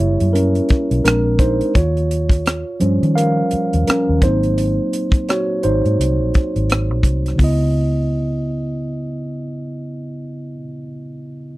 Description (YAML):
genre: R&B, neo-soul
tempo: 85 BPM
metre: 4/4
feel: swing 60% on 16ths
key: C# dorian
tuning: A4 = 443 Hz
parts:
  - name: mellow tine electric piano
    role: accompaniment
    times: 0.0-11.6 s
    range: C#3 to E#5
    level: -19 LUFS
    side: right 1 dB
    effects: none
  - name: vintage muted fingered electric bass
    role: bass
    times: 0.0-10.6 s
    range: F#1 to D#3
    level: -18 LUFS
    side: equal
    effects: none
  - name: tight funk drum kit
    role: drums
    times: 0.2-7.6 s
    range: hi-hat, kick drum, rim click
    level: -16 LUFS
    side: equal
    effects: none
room: little or no reverb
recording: dry, close 1970s-style studio recording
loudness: -15 LUFS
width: side -18 dB against mid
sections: 0.0-7.4 A section; 7.4-10.2 B section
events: tine electric piano solo 0.0-7.4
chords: 0.0 F#7b9; 1.0 A#9; 1.7 D#13; 4.2 G#9; 7.4 C#m9